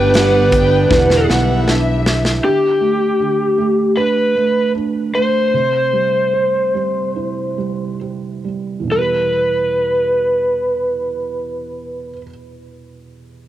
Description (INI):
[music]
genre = pop ballad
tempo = 67-79 BPM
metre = 4/4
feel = straight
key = E minor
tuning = A4 = 439 Hz
[part]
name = lead guitar through a small cranked amp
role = melody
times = 0.0-12.2 s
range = G4 to C5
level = -16 LUFS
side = equal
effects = overdrive, cassette tape
[part]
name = dark studio violin section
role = second line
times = 0.0-2.4 s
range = E5 to G5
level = -24 LUFS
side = left 2 dB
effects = cassette tape
[part]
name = felt-muted upright piano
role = accompaniment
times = 0.0-13.5 s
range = E2 to C5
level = -22 LUFS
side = right 5 dB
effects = cassette tape
[part]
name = airy breathy pad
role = sustained chords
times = 0.0-2.4 s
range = D3 to G4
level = -20 LUFS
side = equal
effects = chorus, cassette tape
[part]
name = fretless electric bass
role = bass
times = 0.0-2.4 s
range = E1 to B1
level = -18 LUFS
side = equal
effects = none
[part]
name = modern studio drum kit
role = drums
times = 0.1-2.4 s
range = hi-hat, kick drum, snare drum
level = -18 LUFS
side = equal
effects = cassette tape
[sound]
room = light reverb, small room ambience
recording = home recording on cassette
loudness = -14 LUFS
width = side -12 dB against mid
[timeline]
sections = 0.0-2.4 A section; 2.4-8.9 B section; 8.9-12.5 C section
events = drum fill 0.9-2.4; slowing down 2.4-8.9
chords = 0.0 G; 0.9 Em7; 2.4 Dsus4; 5.5 C; 8.9 Em